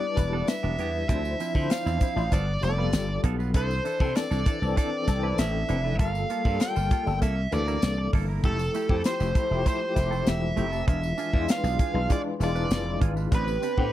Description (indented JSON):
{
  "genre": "polished 1980s jazz-funk pop",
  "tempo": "98 BPM",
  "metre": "4/4",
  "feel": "straight",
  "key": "C major",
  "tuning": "A4 = 438 Hz",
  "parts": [
    { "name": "nasal lead guitar with a parked wah", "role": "melody", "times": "0.0-13.9 s", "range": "A4 to G5", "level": "-30 LUFS", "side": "right 1 dB", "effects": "overdrive, slapback echo" },
    { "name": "overdriven tine electric piano", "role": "accompaniment", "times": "0.0-13.9 s", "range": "D3 to C5", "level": "-32 LUFS", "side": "left 4 dB", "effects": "fast tremolo, analog chorus" },
    { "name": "semi-hollow electric guitar", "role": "riff", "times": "0.0-13.9 s", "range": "F3 to B4", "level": "-36 LUFS", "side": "right 8 dB", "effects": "wide subtle chorus" },
    { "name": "slap bass", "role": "bass", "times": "0.2-13.9 s", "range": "E1 to D3", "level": "-28 LUFS", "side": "equal", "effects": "none" },
    { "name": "tight funk drum kit", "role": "drums", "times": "0.2-13.9 s", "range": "hi-hat, kick drum, snare drum", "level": "-24 LUFS", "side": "equal", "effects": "none" },
    { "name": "tambourine", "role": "percussion", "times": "0.2-13.8 s", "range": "none", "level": "-48 LUFS", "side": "left 14 dB", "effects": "none" }
  ],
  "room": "small room reverb",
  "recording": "dry, close 1970s-style studio recording",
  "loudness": "-23 LUFS",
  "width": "side -13 dB against mid",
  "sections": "0.0-13.9 A section",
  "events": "none",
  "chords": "0.0 Em7; 1.1 Dm9; 2.3 G9; 3.5 C69; 6.0 Gm9; 7.2 C13; 8.4 Fmaj9; 10.9 E7b9; 13.3 Am11"
}